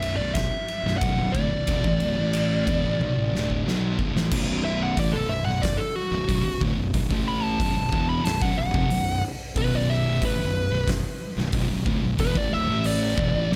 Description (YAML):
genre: stoner and doom metal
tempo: 91 BPM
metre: 4/4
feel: straight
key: B minor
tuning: A4 = 440 Hz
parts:
  - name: fuzz lead guitar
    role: melody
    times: 0.0-13.5 s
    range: F#4 to B5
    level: -31 LUFS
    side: equal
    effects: distortion, tape echo
  - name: thick fuzz guitar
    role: riff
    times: 0.0-13.6 s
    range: B1 to B3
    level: -31 LUFS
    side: equal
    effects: distortion
  - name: thick fuzz guitar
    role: riff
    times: 0.0-13.6 s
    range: B1 to B3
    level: -31 LUFS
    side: equal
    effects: distortion
  - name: fuzz fingered electric bass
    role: bass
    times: 0.0-13.6 s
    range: B0 to B1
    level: -32 LUFS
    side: equal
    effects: overdrive, tube saturation
  - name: oversized low-tuned drum kit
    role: drums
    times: 0.0-13.6 s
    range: crash cymbal, hi-hat, kick drum, ride cymbal, snare drum, toms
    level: -31 LUFS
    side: equal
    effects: none
room: light reverb, studio reverb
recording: none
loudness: -24 LUFS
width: mono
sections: 0.0-4.3 A section; 4.3-13.6 B section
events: drum fill 3.0-4.3; lead electric guitar solo 4.3-13.6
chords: 0.0 Bm